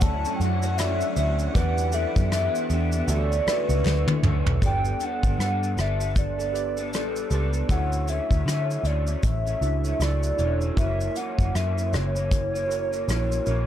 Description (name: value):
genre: indie pop, bedroom pop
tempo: 78 BPM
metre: 4/4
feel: swing 60% on 16ths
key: D major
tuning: A4 = 438 Hz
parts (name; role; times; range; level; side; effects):
- hollow clarinet-like synth lead; melody; 0.0-13.7 s; A4 to A5; -29 LUFS; equal; lush chorus, digital delay
- buzzing kalimba; second line; 0.0-3.7 s; A4 to D5; -34 LUFS; right 2 dB; lush chorus, digital delay
- electric guitar through a small old amp; accompaniment; 0.0-13.7 s; F#2 to A4; -33 LUFS; left 2 dB; analog chorus, vibrato effect
- warbly lo-fi synth keys; accompaniment; 0.0-13.7 s; D4 to F#5; -35 LUFS; right 7 dB; chorus, cassette tape
- soft string machine; sustained chords; 0.0-4.6 s; D3 to F#5; -33 LUFS; equal; phaser, ensemble chorus
- vintage muted picked electric bass; bass; 0.0-13.7 s; E1 to D3; -25 LUFS; equal; none
- soft brush drum kit; drums; 0.0-13.7 s; hi-hat, kick drum, rim click, shaker, snare drum, toms; -26 LUFS; equal; none
- group handclap; percussion; 0.8-4.1 s; none; -39 LUFS; left 4 dB; none
room: little or no reverb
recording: dark, warm production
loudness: -22 LUFS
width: side -11 dB against mid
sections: 0.0-4.6 A section; 4.6-13.7 B section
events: drum fill 3.9-4.6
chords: 0.0 Dmaj7; 1.6 Em7; 3.1 Dmaj7; 4.6 Gadd9; 7.7 Dmaj7; 10.8 F#7